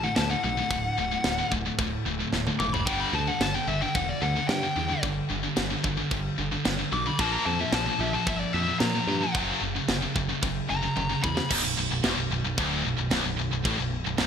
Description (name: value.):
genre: heavy metal.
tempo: 111 BPM.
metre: 4/4.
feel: straight.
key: unclear.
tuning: A4 = 435 Hz.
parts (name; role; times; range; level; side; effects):
high-gain lead guitar; melody; 0.0-11.5 s; D5 to D6; -30 LUFS; left 3 dB; distortion, digital delay.
heavy high-gain guitar; riff; 0.0-14.3 s; B1 to A#3; -30 LUFS; left 9 dB; distortion.
scooped high-gain guitar; riff; 0.0-14.3 s; B1 to A#3; -31 LUFS; right 10 dB; distortion.
modern bright picked electric bass; bass; 0.0-14.3 s; B0 to A#2; -32 LUFS; right 1 dB; none.
tight metal drum kit; drums; 0.2-14.3 s; crash cymbal, kick drum, snare drum, toms; -31 LUFS; right 1 dB; none.
room: moderate plate reverb, RT60 1.2 s, small room reverb.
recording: bright 1980s-style digital production.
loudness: -24 LUFS.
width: side -7 dB against mid.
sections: 0.0-11.5 A section; 11.5-14.3 B section.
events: lead electric guitar solo 0.0-11.5; drum fill 2.3-2.9, 11.0-11.5.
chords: 0.0 D; 2.9 G5; 7.2 A#5; 9.3 F#; 11.5 Bm.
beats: 0.17 | 0.71 1.25 1.79 2.33 | 2.87 3.41 3.95 4.49 | 5.03 5.57 6.11 6.65 | 7.19 7.73 8.27 8.81 | 9.35 9.89 10.43 10.97 | 11.51 12.04 12.58 13.12 | 13.66 14.20.